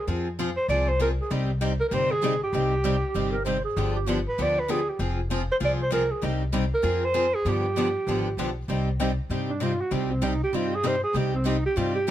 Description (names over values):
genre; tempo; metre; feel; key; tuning
acoustic string swing (jazz manouche); 195 BPM; 4/4; swing 59% on 8ths; C minor; A4 = 439 Hz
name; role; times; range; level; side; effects
breathy alto saxophone; melody; 0.0-12.1 s; C4 to D5; -26 LUFS; right 1 dB; plate reverb
picked steel-string acoustic guitar; accompaniment; 0.1-12.1 s; C3 to Ab4; -30 LUFS; left 6 dB; none
picked steel-string acoustic guitar; accompaniment; 0.1-12.1 s; C3 to Ab4; -32 LUFS; right 5 dB; none
upright bass; bass; 0.1-12.1 s; F1 to G2; -28 LUFS; equal; none
breathy clarinet; second line; 2.7-4.2 s; G4 to C5; -31 LUFS; right 3 dB; none
room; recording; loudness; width
light reverb; none; -23 LUFS; side -12 dB against mid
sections
0.0-8.7 A section; 8.7-12.1 B section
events
alto saxophone solo 8.7-12.1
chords
0.0 Fm; 1.3 Cm; 3.8 G7; 5.0 Fm; 6.2 Cm; 6.8 Fm; 7.5 G7b9; 8.7 Cm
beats
| 0.07 0.37 0.68 0.99 | 1.30 1.60 1.91 2.22 | 2.53 2.83 3.14 3.45 | 3.76 4.07 4.37 4.68 | 4.99 5.30 5.61 5.91 | 6.22 6.53 6.84 7.14 | 7.45 7.76 8.07 8.37 | 8.68 8.99 9.30 9.60 | 9.91 10.22 10.53 10.84 | 11.14 11.45 11.76 12.06